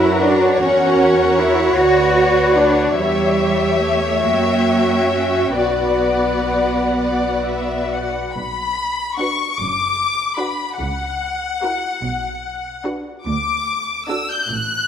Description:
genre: classical, slow romantic movement for string orchestra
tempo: 42-53 BPM (dotted quarters)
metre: 6/8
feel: rubato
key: B minor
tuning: A4 = 440 Hz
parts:
  - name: rich studio violin section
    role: melody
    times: 0.0-14.9 s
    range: A#4 to G6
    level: -21 LUFS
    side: left 4 dB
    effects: none
  - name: rich studio violin section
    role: second line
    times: 0.0-14.4 s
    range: A4 to G5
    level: -21 LUFS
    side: left 3 dB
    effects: none
  - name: rich studio viola section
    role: accompaniment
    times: 0.0-14.4 s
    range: D4 to C#5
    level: -20 LUFS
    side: right 1 dB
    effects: none
  - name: rich studio cello section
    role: bass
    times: 0.0-14.9 s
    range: D2 to F#4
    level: -20 LUFS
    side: right 2 dB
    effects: none
  - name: warm studio double bass section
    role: bass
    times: 0.0-14.9 s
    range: F#1 to F#2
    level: -27 LUFS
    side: right 4 dB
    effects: none
room: wet scoring stage reverb, RT60 1.7 s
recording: none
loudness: -15 LUFS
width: side -9 dB against mid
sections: 0.0-8.4 A section; 8.4-14.9 A section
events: none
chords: 0.0 F#; 0.6 F#7/E; 1.8 Bm/D; 3.0 C#dim/E; 4.2 F#7b9; 5.6 Bm; 10.8 F#7/C#; 12.0 Bm; 13.3 D

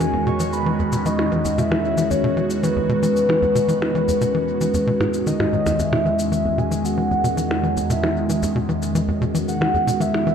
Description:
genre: ambient, sequencer-driven space music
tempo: 114 BPM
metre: 4/4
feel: straight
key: E major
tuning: A4 = 439 Hz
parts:
  - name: soft octave-layered synth lead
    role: melody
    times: 0.0-10.3 s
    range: B4 to C#6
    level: -23 LUFS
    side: left 1 dB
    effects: chorus, phaser, tape echo
  - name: phased analog pad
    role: sustained chords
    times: 0.0-10.3 s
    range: E2 to F#4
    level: -22 LUFS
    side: equal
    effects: phaser, chorus
  - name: tight sequencer bass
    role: riff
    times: 0.0-10.3 s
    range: E2 to E3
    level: -24 LUFS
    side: equal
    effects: vintage 12-bit sampler grit, tape echo
  - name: cabasa and percussion blips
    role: percussion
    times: 0.0-10.2 s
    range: none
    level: -28 LUFS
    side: equal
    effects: tape echo
room: wet echo chamber reverb, RT60 2.3 s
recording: echo-heavy mix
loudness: -18 LUFS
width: side -7 dB against mid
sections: 0.0-10.3 A section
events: none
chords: 0.0 E

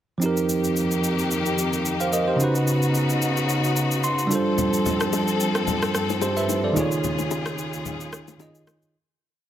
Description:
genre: amapiano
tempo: 110 BPM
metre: 4/4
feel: swing 55% on 16ths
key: unclear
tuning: A4 = 439 Hz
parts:
  - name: bell-like tine electric piano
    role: accompaniment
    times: 0.2-9.0 s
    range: Db3 to C6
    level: -22 LUFS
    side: right 2 dB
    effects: none
  - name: bright studio string section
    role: sustained chords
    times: 0.2-8.9 s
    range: Eb2 to A4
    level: -27 LUFS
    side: left 4 dB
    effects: none
  - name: electronic shaker and rim click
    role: drums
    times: 0.2-8.9 s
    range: none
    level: -30 LUFS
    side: left 1 dB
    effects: none
  - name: congas and bongos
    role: percussion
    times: 4.6-8.8 s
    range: none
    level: -30 LUFS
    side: left 7 dB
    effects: none
room: light reverb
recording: none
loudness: -20 LUFS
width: side -11 dB against mid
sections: 0.2-8.9 breakdown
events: tine electric piano fill 3.8-4.6; fade-out 6.8-8.9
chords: 0.2 F9sus4; 2.4 Db9sus4; 4.3 G9sus4; 6.8 Eb9sus4

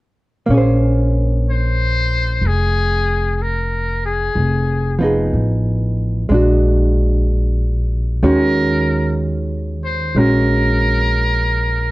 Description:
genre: jazz ballad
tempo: 62 BPM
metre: 4/4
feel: swing 66% on 8ths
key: Bb minor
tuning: A4 = 441 Hz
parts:
  - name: hollow-body jazz guitar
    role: accompaniment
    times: 0.5-11.9 s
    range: Eb3 to C5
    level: -18 LUFS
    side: right 1 dB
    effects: none
  - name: upright bass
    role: bass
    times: 0.5-11.9 s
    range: F1 to Eb2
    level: -17 LUFS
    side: equal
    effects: none
  - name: trumpet with metal mute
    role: melody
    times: 1.5-11.9 s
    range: Ab4 to C5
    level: -20 LUFS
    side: left 1 dB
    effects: none
room: little or no reverb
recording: worn, warbling old tape, cassette tape, warbly pitch drift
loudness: -14 LUFS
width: side -18 dB against mid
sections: 0.5-11.9 A section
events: none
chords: 0.5 Bbm9; 4.4 Fm7b5; 6.3 Bb7b13; 8.2 Ebm7

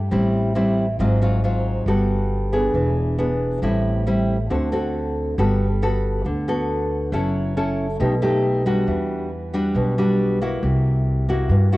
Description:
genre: bossa nova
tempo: 137 BPM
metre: 4/4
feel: straight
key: G major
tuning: A4 = 440 Hz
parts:
  - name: nylon-string guitar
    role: accompaniment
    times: 0.0-11.8 s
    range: G2 to A4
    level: -20 LUFS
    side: equal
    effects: cassette tape
  - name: upright bass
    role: bass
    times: 0.0-11.8 s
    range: E1 to G2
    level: -23 LUFS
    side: equal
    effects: none
room: light reverb, studio reverb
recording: home recording on cassette, nothing above 10.6 kHz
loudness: -18 LUFS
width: side -18 dB against mid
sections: 0.0-5.4 A section; 5.4-11.8 B section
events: none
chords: 0.1 Am7; 1.0 Ab6; 1.9 Gmaj9; 2.7 E7; 3.6 Am7; 4.5 D7; 5.4 Gmaj9; 7.1 F#m7; 8.0 B7alt; 8.9 Em9; 10.6 C7#11

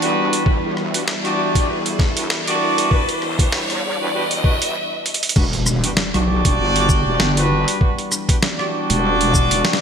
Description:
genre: glitch hop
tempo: 98 BPM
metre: 4/4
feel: swing 56% on 16ths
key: E minor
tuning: A4 = 437 Hz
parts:
  - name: warm analog pad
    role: sustained chords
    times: 0.0-9.8 s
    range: E3 to E4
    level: -27 LUFS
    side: equal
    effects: chorus, sidechain pumping
  - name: warm horn section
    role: stabs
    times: 0.0-9.8 s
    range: D4 to D5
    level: -21 LUFS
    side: right 1 dB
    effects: sidechain pumping, low-pass filter, ping-pong delay
  - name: wobble bass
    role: bass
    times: 0.0-9.6 s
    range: E1 to E2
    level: -22 LUFS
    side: equal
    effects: chorus, tube saturation, high-pass filter
  - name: boom bap sampler-style drum kit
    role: drums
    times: 0.0-9.8 s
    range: crash cymbal, hi-hat, rim click, shaker, snare drum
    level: -22 LUFS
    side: right 1 dB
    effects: high-pass filter on hats, high-pass filter on snare, high-pass filter on cymbals, high-pass filter on perc, gated reverb
  - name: riser and impact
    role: sound effects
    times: 0.4-7.8 s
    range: none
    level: -26 LUFS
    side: left 1 dB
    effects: none
  - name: electronic kick drum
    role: drums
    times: 0.5-9.5 s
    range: none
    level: -17 LUFS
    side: equal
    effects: none
room: moderate lush hall reverb, RT60 2.6 s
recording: bright 1980s-style digital production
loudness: -16 LUFS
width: side -7 dB against mid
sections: 0.0-5.4 A section; 5.4-9.8 B section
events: build-up 0.0-5.4; riser 0.4-4.7; stop 4.7-5.4; drum fill 5.1-5.4; drop 5.4-9.8; impact 5.4-7.8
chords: 0.0 Em7

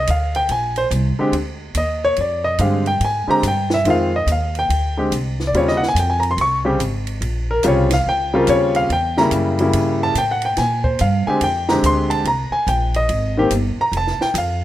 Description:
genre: jazz piano trio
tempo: 143 BPM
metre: 4/4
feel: swing 64% on 8ths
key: unclear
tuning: A4 = 440 Hz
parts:
  - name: clear grand piano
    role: melody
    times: 0.0-14.6 s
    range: Db3 to Db6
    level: -17 LUFS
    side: equal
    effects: none
  - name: upright bass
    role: bass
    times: 0.0-14.6 s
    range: F1 to Bb2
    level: -21 LUFS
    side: equal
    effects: none
  - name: compact cocktail drum kit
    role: drums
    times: 0.1-14.5 s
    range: hi-hat, kick drum, ride cymbal, snare drum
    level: -28 LUFS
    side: right 2 dB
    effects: none
room: light reverb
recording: rough home demo mix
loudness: -16 LUFS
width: side -13 dB against mid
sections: 0.0-14.6 A section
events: grand piano solo 0.0-14.6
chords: 0.0 Bb13; 3.9 Fm7; 4.7 Csus2; 5.5 Eb13; 8.9 Edim7; 10.6 Bb13; 12.3 Cm7; 13.9 F

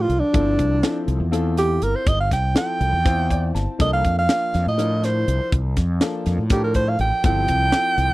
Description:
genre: electric jazz fusion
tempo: 244 BPM (eighths)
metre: 7/8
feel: straight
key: C mixolydian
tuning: A4 = 438 Hz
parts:
  - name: breathy alto saxophone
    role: melody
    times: 0.0-8.1 s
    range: D4 to G5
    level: -21 LUFS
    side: right 2 dB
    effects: none
  - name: warm grand piano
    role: accompaniment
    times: 0.0-8.1 s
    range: F3 to A5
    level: -27 LUFS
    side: left 3 dB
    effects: none
  - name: fretless electric bass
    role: bass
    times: 0.0-8.1 s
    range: G1 to A2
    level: -21 LUFS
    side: equal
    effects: none
  - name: tight funk drum kit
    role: drums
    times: 0.1-8.1 s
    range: hi-hat, kick drum, snare drum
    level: -22 LUFS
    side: equal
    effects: none
room: studio ambience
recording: dry, close 1970s-style studio recording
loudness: -18 LUFS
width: side -18 dB against mid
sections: 0.0-8.1 A section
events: alto saxophone solo 0.0-8.1; grand piano fill 3.1-3.8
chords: 0.3 G13sus4; 3.8 C13sus4; 7.2 G13sus4

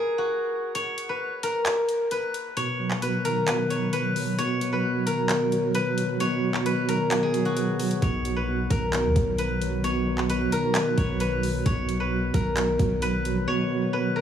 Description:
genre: hip hop, trap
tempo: 132 BPM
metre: 4/4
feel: half-time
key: B major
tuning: A4 = 440 Hz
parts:
  - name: steel-string zither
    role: melody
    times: 0.0-14.2 s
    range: F#4 to C#5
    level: -27 LUFS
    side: left 1 dB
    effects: low-pass filter, tape echo
  - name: trap drum kit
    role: drums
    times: 0.8-13.4 s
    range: handclaps, hi-hat, kick drum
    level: -29 LUFS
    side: equal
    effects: none
  - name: tine electric piano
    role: accompaniment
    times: 2.6-14.2 s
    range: B2 to B4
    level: -26 LUFS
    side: right 2 dB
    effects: medium stereo tremolo, low-pass filter
  - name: long sustained 808-style bass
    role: bass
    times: 8.0-13.5 s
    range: A#1 to D#2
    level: -29 LUFS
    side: equal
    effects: none
room: light reverb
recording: small room ambience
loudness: -23 LUFS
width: side -9 dB against mid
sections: 0.0-14.2 A section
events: break 0.0-2.6; kick muted 0.7-8.0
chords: 0.0 N.C.; 0.7 B

